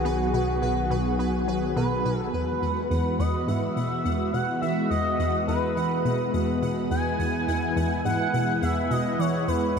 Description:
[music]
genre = ambient, sequencer-driven space music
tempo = 105 BPM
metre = 4/4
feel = straight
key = unclear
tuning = A4 = 441 Hz
[part]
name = expressive synth lead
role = melody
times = 0.0-9.8 s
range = F#4 to G#5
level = -28 LUFS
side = equal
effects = wide subtle chorus, shimmer reverb, ping-pong delay
[part]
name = lush unison pad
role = sustained chords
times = 0.0-9.8 s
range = D#3 to G#4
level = -27 LUFS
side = equal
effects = chorus, shimmer reverb
[part]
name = warm sub bass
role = bass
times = 0.0-2.3 s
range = B1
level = -32 LUFS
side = equal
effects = none
[part]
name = pulsing gated texture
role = texture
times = 0.0-9.8 s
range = B4 to F#5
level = -40 LUFS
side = left 3 dB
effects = chorus, built-in reverb, shimmer reverb
[part]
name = resonant blip pluck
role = riff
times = 0.1-9.8 s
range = E2 to B3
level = -28 LUFS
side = equal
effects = chorus, ping-pong delay
[sound]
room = wet huge ambient reverb, RT60 7.9 s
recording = in a vast, echoing space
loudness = -23 LUFS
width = side -6 dB against mid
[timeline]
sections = 0.0-2.3 A section; 2.3-9.8 B section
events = none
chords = 0.0 B; 2.3 Eadd9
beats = | 0.05 0.62 1.20 1.77 | 2.34 2.91 3.48 4.05 | 4.62 5.20 5.77 6.34 | 6.91 7.48 8.05 8.62 | 9.20 9.77

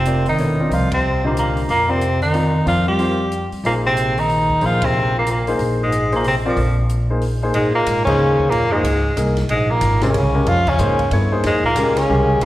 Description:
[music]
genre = modal jazz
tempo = 184 BPM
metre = 3/4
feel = swing 63% on 8ths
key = Bb dorian from 7.5 s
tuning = A4 = 440 Hz
[part]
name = warm tenor saxophone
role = melody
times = 0.0-12.4 s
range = F3 to G4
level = -19 LUFS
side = equal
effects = plate reverb, slapback echo
[part]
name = mellow bass clarinet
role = second line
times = 0.0-12.4 s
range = F2 to G3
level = -22 LUFS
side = equal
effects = slapback echo
[part]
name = upright bass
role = bass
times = 0.0-12.4 s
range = E1 to Bb2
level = -21 LUFS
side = equal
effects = none
[part]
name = warm grand piano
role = accompaniment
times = 0.1-12.4 s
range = D3 to Eb5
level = -22 LUFS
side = left 2 dB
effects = plate reverb, slapback echo
[part]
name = compact cocktail drum kit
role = drums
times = 0.1-12.4 s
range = crash cymbal, hi-hat, kick drum, ride cymbal, snare drum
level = -31 LUFS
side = equal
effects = none
[sound]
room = moderate club reverb, RT60 0.5 s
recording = live gig heard through the venue's PA, recital hall reverb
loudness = -15 LUFS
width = side -15 dB against mid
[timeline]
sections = 0.0-7.5 A section; 7.5-12.4 B section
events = band accent 0.9, 4.8, 8.0, 10.6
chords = 0.0 F9sus4; 3.6 Bb9sus4; 7.5 Bbm9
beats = 0.06 0.39 | 0.71 1.04 1.36 | 1.69 2.01 2.34 | 2.67 2.99 3.32 | 3.64 3.97 4.29 | 4.62 4.94 5.27 | 5.59 5.92 6.25 | 6.57 6.89 7.22 | 7.54 7.87 8.19 | 8.52 8.84 9.17 | 9.49 9.81 10.14 | 10.46 10.79 11.11 | 11.44 11.76 12.08 | 12.41

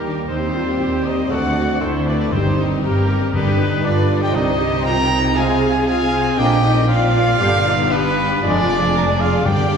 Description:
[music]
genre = cinematic, heroic adventure film score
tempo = 118 BPM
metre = 4/4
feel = straight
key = C minor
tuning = A4 = 441 Hz
[part]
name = warm symphonic violin section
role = melody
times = 0.0-9.8 s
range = G4 to G5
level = -26 LUFS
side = left 6 dB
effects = none
[part]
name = bright large flute ensemble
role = second line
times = 0.0-9.8 s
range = Bb4 to Bb5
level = -27 LUFS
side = left 2 dB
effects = none
[part]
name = dark cor anglais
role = second line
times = 0.0-9.8 s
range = Bb3 to Bb4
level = -28 LUFS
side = right 1 dB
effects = none
[part]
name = rich symphonic violin section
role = second line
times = 0.0-9.8 s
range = G3 to F4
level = -28 LUFS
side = left 5 dB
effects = none
[part]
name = rich symphonic viola section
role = accompaniment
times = 0.0-9.8 s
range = C4 to Bb4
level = -24 LUFS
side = right 2 dB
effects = none
[part]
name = warm French horn section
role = sustained chords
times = 0.0-9.6 s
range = G3 to G4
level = -27 LUFS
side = equal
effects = none
[part]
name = warm trombone section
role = sustained chords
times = 0.0-9.6 s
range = C3 to Bb3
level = -29 LUFS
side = right 2 dB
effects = none
[part]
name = bright trumpet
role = stabs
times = 0.0-9.8 s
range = Bb4 to Bb5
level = -22 LUFS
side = right 2 dB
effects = none
[part]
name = rich symphonic cello section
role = bass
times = 0.0-9.8 s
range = D2 to C3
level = -23 LUFS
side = right 2 dB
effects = none
[part]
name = warm symphonic double bass section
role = bass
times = 0.0-9.8 s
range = F1 to Eb2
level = -23 LUFS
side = equal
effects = none
[part]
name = timpani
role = percussion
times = 2.3-4.1, 9.5-9.8 s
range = G2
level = -22 LUFS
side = left 2 dB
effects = none
[sound]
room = wet concert hall reverb, RT60 1.9 s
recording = heard from further back in the room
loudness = -15 LUFS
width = side -6 dB against mid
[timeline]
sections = 0.0-9.8 A section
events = none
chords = 0.3 Cm/Eb; 1.3 D7; 2.3 Cm/G; 3.3 G; 4.4 Cm; 5.4 Fm/C; 6.4 Bbadd9; 7.4 G; 8.4 Ddim/F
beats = | 0.29 0.80 1.31 1.82 | 2.32 2.83 3.34 3.85 | 4.36 4.86 5.37 5.88 | 6.39 6.90 7.41 7.92 | 8.43 8.95 9.46

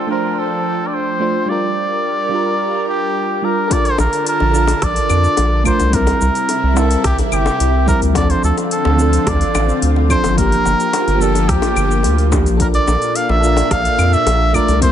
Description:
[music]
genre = sunset chillout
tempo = 108 BPM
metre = 4/4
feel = straight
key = unclear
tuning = A4 = 440 Hz
[part]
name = trumpet with cup mute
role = melody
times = 0.0-14.9 s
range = G4 to F5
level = -18 LUFS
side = right 1 dB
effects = digital delay
[part]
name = mellow FM electric piano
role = accompaniment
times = 0.0-14.9 s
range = F3 to C5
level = -20 LUFS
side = equal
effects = chorus, auto-pan
[part]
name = lush unison pad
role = sustained chords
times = 0.0-14.9 s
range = Bb2 to A5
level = -23 LUFS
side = right 1 dB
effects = chorus, phaser
[part]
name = drifting glass-harmonics texture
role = texture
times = 0.0-3.7 s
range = G5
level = -36 LUFS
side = right 5 dB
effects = none
[part]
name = electronic kick drum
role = drums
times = 3.7-14.9 s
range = none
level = -21 LUFS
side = equal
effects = small room reverb
[part]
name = smooth R&B drum kit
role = drums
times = 3.7-14.9 s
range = cabasa, claves, hi-hat, rim click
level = -24 LUFS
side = left 1 dB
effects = small room reverb
[part]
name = bongos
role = percussion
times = 3.7-14.8 s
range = none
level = -26 LUFS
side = left 6 dB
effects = none
[part]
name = round analog bass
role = bass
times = 4.0-14.9 s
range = G1 to F2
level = -16 LUFS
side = equal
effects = none
[sound]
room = light reverb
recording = nothing above 11.0 kHz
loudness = -13 LUFS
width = side -10 dB against mid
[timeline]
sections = 0.0-3.7 A section; 3.7-14.9 B section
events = none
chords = 0.0 Dm7; 1.5 Gm7; 3.7 Bbmaj7; 5.9 C7; 8.2 Dm7; 10.4 Gm7; 12.6 Bbmaj7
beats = 0.38 0.93 | 1.49 2.04 2.60 3.15 | 3.71 4.26 4.82 5.38 | 5.93 6.49 7.04 7.60 | 8.15 8.71 9.27 9.82 | 10.38 10.93 11.49 12.04 | 12.60 13.15 13.71 14.27 | 14.82

